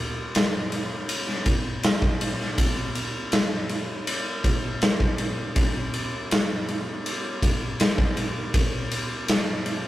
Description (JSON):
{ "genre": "rock", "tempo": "81 BPM", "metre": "4/4", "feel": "straight", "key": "none", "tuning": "none", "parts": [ { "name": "raw garage drum kit", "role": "drums", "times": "0.3-9.8 s", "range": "kick drum, ride cymbal, snare drum", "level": "-23 LUFS", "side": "equal", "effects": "none" } ], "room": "light reverb", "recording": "rough rehearsal-room recording, tube saturation", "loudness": "-23 LUFS", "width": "side -15 dB against mid", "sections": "0.0-9.9 A section", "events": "none", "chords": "none" }